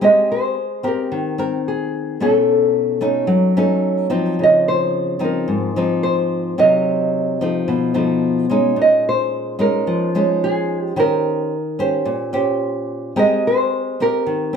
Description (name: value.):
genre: bossa nova.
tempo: 110 BPM.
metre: 4/4.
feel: straight.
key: Ab major.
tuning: A4 = 440 Hz.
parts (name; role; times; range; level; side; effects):
nylon-string guitar; melody; 0.0-14.6 s; Ab4 to Eb5; -17 LUFS; equal; plate reverb.
nylon-string guitar; accompaniment; 0.0-14.6 s; Ab2 to C5; -18 LUFS; equal; none.
room: wet studio reverb, RT60 0.8 s.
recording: none.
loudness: -16 LUFS.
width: side -6 dB against mid.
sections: 0.0-14.6 A section.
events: none.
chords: 0.0 Abmaj9; 2.2 B9; 4.4 Dbmaj9; 6.6 Cm7b5; 7.7 B7#11; 8.8 Bbm11; 11.0 Eb6; 13.2 Abmaj9.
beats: | 0.00 0.55 1.10 1.65 | 2.19 2.74 3.29 3.84 | 4.39 4.93 5.48 6.03 | 6.58 7.13 7.67 8.22 | 8.77 9.32 9.87 10.41 | 10.96 11.51 12.06 12.61 | 13.16 13.71 14.25.